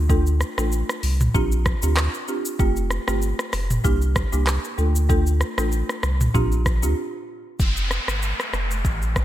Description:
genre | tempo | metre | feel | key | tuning
afrobeats | 96 BPM | 4/4 | swing 55% on 16ths | F major | A4 = 445 Hz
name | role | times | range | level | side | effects
folk marimba with medium mallets | accompaniment | 0.0-7.0 s | A3 to A4 | -27 LUFS | right 1 dB | none
warm sub bass | bass | 0.0-9.2 s | F1 to D2 | -22 LUFS | equal | none
afro-pop drum kit | drums | 0.1-9.2 s | handclaps, hi-hat, kick drum, rim click, shaker, toms | -24 LUFS | equal | none
downlifter | sound effects | 7.6-9.2 s | none | -27 LUFS | equal | none
room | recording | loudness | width
light reverb, digital ambience | bright 1980s-style digital production | -20 LUFS | side -13 dB against mid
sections
0.0-7.6 A section; 7.6-9.2 B section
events
break 7.0-7.6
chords
0.0 Dm; 1.3 Bb6; 2.6 Fadd9; 3.8 C7; 4.8 Dm; 6.3 Bb6; 7.6 Fadd9

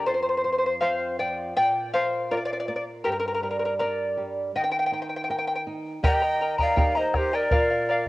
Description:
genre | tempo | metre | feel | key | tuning
andean folk, Andean ensemble | 81 BPM | 2/4 | straight | unclear | A4 = 439 Hz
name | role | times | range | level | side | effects
charango | accompaniment | 0.0-8.1 s | G4 to Bb5 | -25 LUFS | left 1 dB | cassette tape
flamenco guitar | accompaniment | 0.0-8.1 s | F2 to Bb4 | -33 LUFS | right 2 dB | cassette tape
breathy reedy pan flute | second line | 6.0-8.1 s | G4 to Eb5 | -29 LUFS | right 2 dB | cassette tape
bombo | percussion | 6.0-7.7 s | none | -24 LUFS | equal | none
breathy large quena | melody | 6.1-8.1 s | C5 to G5 | -25 LUFS | equal | cassette tape
room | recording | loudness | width
light reverb, small room ambience | home recording on cassette | -23 LUFS | side -19 dB against mid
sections
0.1-6.0 A section; 6.0-8.1 B section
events
charango solo 0.1-6.0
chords
0.1 F5; 1.6 Bb; 3.1 Gm; 4.5 Eb5; 7.5 Bb

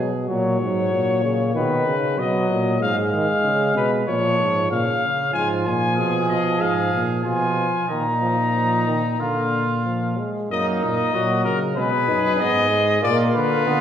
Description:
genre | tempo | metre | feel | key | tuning
classical, imitative canzona for brass ensemble | 95 BPM | 4/4 | straight | Eb minor from 5.3 s | A4 = 442 Hz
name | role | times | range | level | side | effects
clear trumpet | second line | 0.0-0.3, 5.3-13.8 s | Eb4 to Bb4 | -27 LUFS | right 3 dB | none
warm trombone | accompaniment | 0.0-13.8 s | C#3 to Eb4 | -24 LUFS | right 1 dB | none
clear bass trombone | bass | 0.0-13.8 s | Gb2 to D#3 | -24 LUFS | equal | none
warm trumpet | melody | 0.3-13.8 s | Bb4 to Bb5 | -22 LUFS | left 3 dB | none
room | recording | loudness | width
wet recital hall reverb, RT60 1.4 s | recorded in a church or concert hall | -18 LUFS | side -9 dB against mid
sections
0.0-10.5 A section; 10.5-13.8 B section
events
none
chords
0.3 F#; 1.6 B; 2.8 Fdim/Ab; 4.1 A#m; 5.3 Fdim/Ab; 7.9 Bbsus4; 9.2 Bb; 10.5 Ebm/Gb; 11.8 Abm; 13.0 Bb

